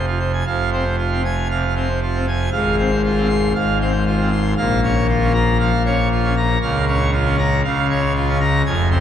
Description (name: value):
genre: classical, organ toccata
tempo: 118 BPM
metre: 4/4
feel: straight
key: F minor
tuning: A4 = 440 Hz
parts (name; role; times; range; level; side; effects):
- pipe organ, full organ; solo; 0.0-9.0 s; F1 to C6; -16 LUFS; equal; none
room: wet cathedral reverb, RT60 4.6 s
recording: recorded in a church or concert hall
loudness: -16 LUFS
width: side -9 dB against mid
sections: 0.5-9.0 A section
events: none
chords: 0.5 Fm; 2.5 Fm/Ab; 4.6 Bbm; 6.6 Bbm/Db